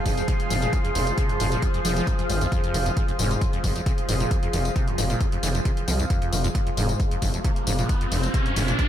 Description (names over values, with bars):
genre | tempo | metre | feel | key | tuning
driving peak-time techno | 134 BPM | 4/4 | straight | F minor | A4 = 439 Hz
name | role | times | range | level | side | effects
overtone-sweeping drone | drone | 0.0-8.9 s | F3 to F4 | -31 LUFS | equal | chorus, built-in reverb, sidechain pumping
granular cloud pad | texture | 0.0-8.9 s | Ab4 to F5 | -31 LUFS | equal | built-in reverb, sidechain pumping
acid bass, saw | riff | 0.1-8.9 s | E2 to F3 | -29 LUFS | equal | wide subtle chorus, sidechain pumping, tape echo
gritty driven synth bass | bass | 0.1-8.7 s | F1 to C2 | -26 LUFS | equal | sidechain pumping
electronic hi-hat and tambourine | drums | 0.1-8.9 s | none | -33 LUFS | left 2 dB | none
electronic kick drum | drums | 0.1-8.9 s | none | -24 LUFS | equal | none
riser | sound effects | 7.1-8.9 s | none | -30 LUFS | right 1 dB | none
room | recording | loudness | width
light reverb | none | -21 LUFS | side -10 dB against mid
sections
0.0-8.9 A section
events
filter sweep on acid bass 0.0-8.9; riser 7.1-8.9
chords
0.0 Fm